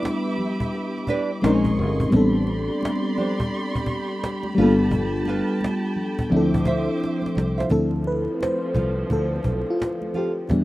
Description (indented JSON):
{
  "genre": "R&B, neo-soul",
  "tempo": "86 BPM",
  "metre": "4/4",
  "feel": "swing 64% on 16ths",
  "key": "D dorian",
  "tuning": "A4 = 439 Hz",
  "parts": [
    { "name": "flamenco guitar", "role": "second line", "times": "0.0-10.3 s", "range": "D4 to E5", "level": "-27 LUFS", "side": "right 3 dB", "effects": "none" },
    { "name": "mellow FM electric piano", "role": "accompaniment", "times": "0.0-10.6 s", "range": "F3 to C5", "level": "-22 LUFS", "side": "left 1 dB", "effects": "chorus" },
    { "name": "warm studio string section", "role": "sustained chords", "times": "0.0-10.6 s", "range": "D3 to D6", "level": "-32 LUFS", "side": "right 2 dB", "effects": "none" },
    { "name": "congas", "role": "percussion", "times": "0.0-10.6 s", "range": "none", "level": "-36 LUFS", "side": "right 1 dB", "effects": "none" },
    { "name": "cajon", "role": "drums", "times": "0.1-10.6 s", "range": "none", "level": "-28 LUFS", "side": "equal", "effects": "none" },
    { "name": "fingered electric bass", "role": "bass", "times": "1.4-10.6 s", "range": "G1 to E2", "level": "-25 LUFS", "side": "equal", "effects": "none" }
  ],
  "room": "little or no reverb",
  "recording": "rough home demo mix, vinyl crackle",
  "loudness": "-20 LUFS",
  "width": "side -17 dB against mid",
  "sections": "0.0-7.7 A section; 7.7-10.6 B section",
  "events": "drum fill 7.0-7.7; FM electric piano solo 7.7-10.6",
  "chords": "0.0 Em7; 1.4 Bbm11; 2.1 Am11; 4.6 G9; 6.3 Dm9; 7.7 Dm7"
}